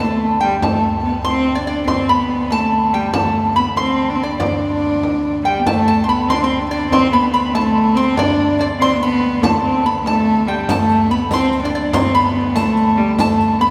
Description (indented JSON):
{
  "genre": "medieval dance",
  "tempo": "96 BPM (dotted quarters)",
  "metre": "6/8",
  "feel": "straight",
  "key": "unclear",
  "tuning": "A4 = 440 Hz",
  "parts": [
    { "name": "warm viola da gamba", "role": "melody", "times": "0.0-13.7 s", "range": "G3 to D4", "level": "-19 LUFS", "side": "equal", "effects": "none" },
    { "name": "metal-body resonator slide guitar", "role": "second line", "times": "0.0-13.7 s", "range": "D5 to C6", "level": "-20 LUFS", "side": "equal", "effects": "none" },
    { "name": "pipe organ, principal", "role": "drone", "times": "0.0-13.7 s", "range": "D2", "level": "-32 LUFS", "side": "equal", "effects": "none" },
    { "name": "frame drum", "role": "percussion", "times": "0.0-13.4 s", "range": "none", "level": "-27 LUFS", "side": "equal", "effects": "none" },
    { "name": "riq", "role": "percussion", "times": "10.7-13.5 s", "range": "none", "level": "-32 LUFS", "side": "equal", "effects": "none" }
  ],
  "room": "wet cathedral reverb, RT60 6.3 s",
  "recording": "band playing live in one room",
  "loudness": "-16 LUFS",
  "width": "mono",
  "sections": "0.0-5.7 A section; 5.7-13.7 A section",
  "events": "none",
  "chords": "none",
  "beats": "| 0.62 1.26 | 1.89 2.52 | 3.15 3.78 | 4.41 5.04 | 5.66 6.29 | 6.92 7.55 | 8.18 8.80 | 9.43 10.06 | 10.69 11.31 | 11.94 12.56 | 13.19"
}